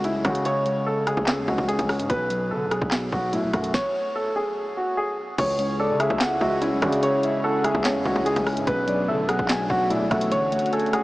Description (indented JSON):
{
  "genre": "hip hop, drill",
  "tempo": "146 BPM",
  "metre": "4/4",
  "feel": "half-time",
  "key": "C# phrygian",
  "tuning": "A4 = 440 Hz",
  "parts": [
    { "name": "dark grand piano", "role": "melody", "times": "0.0-11.0 s", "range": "E4 to C#5", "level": "-25 LUFS", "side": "equal", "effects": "low-pass filter, tape echo" },
    { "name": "mellow tine electric piano", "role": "accompaniment", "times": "0.0-11.0 s", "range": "B2 to C#4", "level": "-28 LUFS", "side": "left 1 dB", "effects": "low-pass filter" },
    { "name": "distorted 808-style bass", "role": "bass", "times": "0.0-10.6 s", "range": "A1 to D3", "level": "-31 LUFS", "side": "equal", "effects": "distortion" },
    { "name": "drill drum kit", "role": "drums", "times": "0.0-11.0 s", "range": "crash cymbal, handclaps, hi-hat, kick drum, rim click, snare drum", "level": "-28 LUFS", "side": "equal", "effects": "none" },
    { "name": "airy breathy pad", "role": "sustained chords", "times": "5.4-11.0 s", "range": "C#3 to G#4", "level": "-32 LUFS", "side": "right 1 dB", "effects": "chorus" },
    { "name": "soft octave-layered synth lead", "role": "second line", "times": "5.6-11.0 s", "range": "C#5 to G#5", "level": "-27 LUFS", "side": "left 1 dB", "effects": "chorus, phaser, tape echo" }
  ],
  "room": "wet huge ambient reverb, RT60 7.5 s",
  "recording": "dreamy mix soaked in reverb, small speaker sound",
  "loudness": "-21 LUFS",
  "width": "side -18 dB against mid",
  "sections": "0.0-5.4 A section; 5.4-11.0 B section",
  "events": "none",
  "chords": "0.0 C#5; 2.1 B7(no3); 3.7 N.C.; 5.4 C#m; 8.7 Bm7; 10.3 Dmaj7"
}